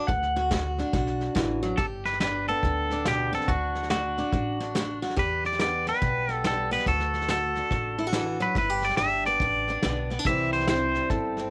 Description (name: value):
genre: honky-tonk and classic country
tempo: 142 BPM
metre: 4/4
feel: swing 64% on 8ths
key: G major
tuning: A4 = 439 Hz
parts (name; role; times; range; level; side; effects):
- pedal steel guitar; second line; 0.0-1.3, 11.1-11.5 s; A4 to F#5; -32 LUFS; equal; cassette tape
- picked steel-string acoustic guitar; accompaniment; 0.0-11.5 s; E2 to G4; -32 LUFS; equal; cassette tape
- pedal steel guitar; sustained chords; 0.0-1.7 s; none; barely audible; none; none
- upright bass; bass; 0.1-11.5 s; G1 to E2; -36 LUFS; equal; none
- vintage brush drum kit; drums; 0.1-11.4 s; hi-hat, kick drum, snare drum; -33 LUFS; equal; cassette tape
- twangy electric guitar; melody; 1.8-11.1 s; F#4 to E5; -29 LUFS; equal; cassette tape
room: light reverb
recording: home recording on cassette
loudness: -26 LUFS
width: mono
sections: 0.0-1.8 A section; 1.8-11.5 B section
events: pedal steel guitar solo 0.0-1.8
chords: 0.0 D; 1.8 G; 3.5 D; 5.2 Em; 6.9 D; 8.6 G; 10.3 C